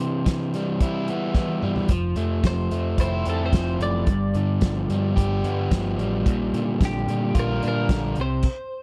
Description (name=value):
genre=indie rock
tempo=110 BPM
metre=4/4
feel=straight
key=unclear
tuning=A4 = 440 Hz
part: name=twelve-string electric guitar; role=melody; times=0.0-8.8 s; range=G4 to D5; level=-35 LUFS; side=equal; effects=subtle chorus, slapback echo
part: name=crunchy overdriven guitar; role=riff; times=0.0-8.5 s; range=G2 to G4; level=-27 LUFS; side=equal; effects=none
part: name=loose indie drum kit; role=drums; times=0.3-8.6 s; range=crash cymbal, hi-hat, kick drum, snare drum, toms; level=-24 LUFS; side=equal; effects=none
part: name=overdriven picked electric bass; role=bass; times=1.9-8.4 s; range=F1 to Bb2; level=-28 LUFS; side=equal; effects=none
room=studio ambience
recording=dry, close 1970s-style studio recording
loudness=-23 LUFS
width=mono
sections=0.0-8.8 A section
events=drum fill 1.4-1.9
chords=0.0 Cmaj7; 1.9 Fmaj7; 4.1 G7; 6.3 Bb6; 8.2 N.C.